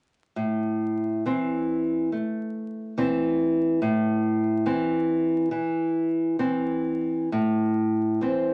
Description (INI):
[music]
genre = romantic duo for flute and classical guitar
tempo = 63-72 BPM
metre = 4/4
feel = rubato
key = A minor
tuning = A4 = 440 Hz
[part]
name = nylon-string guitar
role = accompaniment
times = 0.4-8.5 s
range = A2 to C4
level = -25 LUFS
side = equal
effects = none
[part]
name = concert flute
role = melody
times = 8.2-8.5 s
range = C5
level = -27 LUFS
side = equal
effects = none
[sound]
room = wet studio reverb, RT60 0.5 s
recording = vinyl crackle, nothing above 10.5 kHz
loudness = -25 LUFS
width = mono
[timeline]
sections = 0.4-7.3 A section; 7.3-8.5 B section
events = none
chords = 0.4 Am